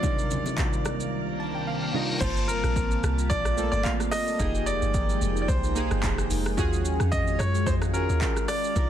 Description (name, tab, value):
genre	amapiano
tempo	110 BPM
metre	4/4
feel	swing 55% on 16ths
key	G phrygian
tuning	A4 = 440 Hz
part	bright concert grand piano	melody	0.0-8.9 s	Bb4 to F5	-30 LUFS	equal	digital delay
part	warm analog keys	accompaniment	0.0-8.9 s	C3 to A5	-31 LUFS	right 2 dB	chorus
part	glassy FM pad	sustained chords	0.0-8.9 s	C2 to G5	-33 LUFS	left 1 dB	ensemble chorus, built-in reverb, phaser, sidechain pumping
part	deep house drum kit	drums	0.0-8.9 s	crash cymbal, handclaps, hi-hat, kick drum, rim click, shaker	-28 LUFS	equal	overdrive
part	congas and bongos	percussion	0.0-1.0 s	none	-36 LUFS	left 1 dB	none
part	reverse cymbal	sound effects	1.4-2.2 s	none	-33 LUFS	left 2 dB	none
part	deep log drum bass	bass	2.2-8.9 s	F1 to Gb2	-27 LUFS	equal	none
room	little or no reverb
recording	dense, heavily limited modern master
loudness	-23 LUFS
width	side -10 dB against mid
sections	0.0-2.2 A section; 2.2-8.9 B section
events	synth keys fill 1.1-2.2; reverse cymbal 1.4-2.2; drop 2.2-8.9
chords	0.0 Cm11; 2.2 Gm11; 4.4 Fm11; 6.6 Ebm11